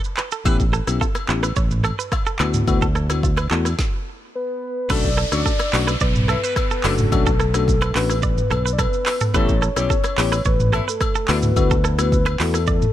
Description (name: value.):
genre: afrobeats.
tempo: 108 BPM.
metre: 4/4.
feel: straight.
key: B minor.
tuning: A4 = 444 Hz.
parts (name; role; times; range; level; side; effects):
afro-pop drum kit; drums; 0.0-12.9 s; crash cymbal, handclaps, hi-hat, kick drum, rim click, shaker, snare drum, toms; -21 LUFS; right 1 dB; none.
direct-recorded clean electric guitar; riff; 0.2-12.8 s; A4 to D5; -28 LUFS; right 8 dB; digital delay.
bell-like tine electric piano; accompaniment; 0.5-12.6 s; A3 to G4; -26 LUFS; left 7 dB; none.
fingered electric bass; bass; 0.5-12.8 s; F#1 to E2; -22 LUFS; equal; none.
agogo bells and woodblock; percussion; 0.5-12.7 s; none; -31 LUFS; left 7 dB; none.
soft octave-layered synth lead; melody; 4.4-12.9 s; A4 to D5; -24 LUFS; left 3 dB; chorus, digital delay.
warm horn section; second line; 4.9-11.4 s; D3 to A4; -31 LUFS; left 4 dB; none.
downlifter; sound effects; 4.9-9.3 s; none; -31 LUFS; right 1 dB; none.
room: little or no reverb.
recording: none.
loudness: -17 LUFS.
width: side -12 dB against mid.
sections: 0.0-4.9 A section; 4.9-12.9 B section.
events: stop 3.8-4.9.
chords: 0.5 A7; 2.4 D6; 4.9 Bm7; 9.3 A7; 11.3 D6.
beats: | 0.45 1.01 1.56 2.12 | 2.68 3.23 3.79 4.34 | 4.90 5.45 6.01 6.57 | 7.12 7.68 8.23 8.79 | 9.34 9.90 10.45 11.01 | 11.56 12.12 12.68.